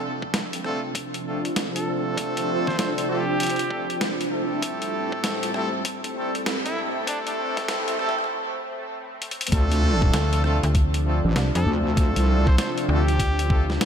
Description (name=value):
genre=glitch hop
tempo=98 BPM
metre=4/4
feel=swing 63% on 16ths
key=D minor pentatonic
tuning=A4 = 440 Hz
part: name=warm analog pad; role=sustained chords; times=0.0-13.9 s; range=A2 to D4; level=-32 LUFS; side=right 1 dB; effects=chorus, vintage 12-bit sampler grit, sidechain pumping
part: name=brilliant horn section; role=stabs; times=0.0-13.7 s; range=A3 to A4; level=-28 LUFS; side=equal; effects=vintage 12-bit sampler grit, sidechain pumping, diffuse ambient delay
part: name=granular cloud pad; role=texture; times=0.0-13.9 s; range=C4 to G5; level=-31 LUFS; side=equal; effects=built-in reverb, lush chorus, sidechain pumping
part: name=electronic kick drum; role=drums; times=0.2-13.7 s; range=none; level=-21 LUFS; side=equal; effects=high-pass filter on kick
part: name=boom bap sampler-style drum kit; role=drums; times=0.3-13.9 s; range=hi-hat, rim click, snare drum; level=-29 LUFS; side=left 1 dB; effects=none
part: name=bright trumpet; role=melody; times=1.8-7.3, 11.6-13.8 s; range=D4 to C5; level=-31 LUFS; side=equal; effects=low-pass filter, diffuse ambient delay
part: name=wobble bass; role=bass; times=9.5-12.6 s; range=A1 to D2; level=-21 LUFS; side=equal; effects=chorus, tube saturation
part: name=slap-like FM bass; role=bass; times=10.1-13.8 s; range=C2 to F2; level=-22 LUFS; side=equal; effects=none
room=moderate lush hall reverb, RT60 3.0 s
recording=dreamy mix soaked in reverb, high-pass filter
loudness=-21 LUFS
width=side -8 dB against mid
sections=0.0-9.5 A section; 9.5-13.9 B section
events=build-up 0.0-9.5; filter sweep on trumpet 0.0-9.5; filter sweep on analog synth pad 0.0-9.5; break 8.3-9.5; drum fill 9.2-9.5; drop 9.5-13.9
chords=0.0 Dm7; 4.6 Am7; 9.5 Dm7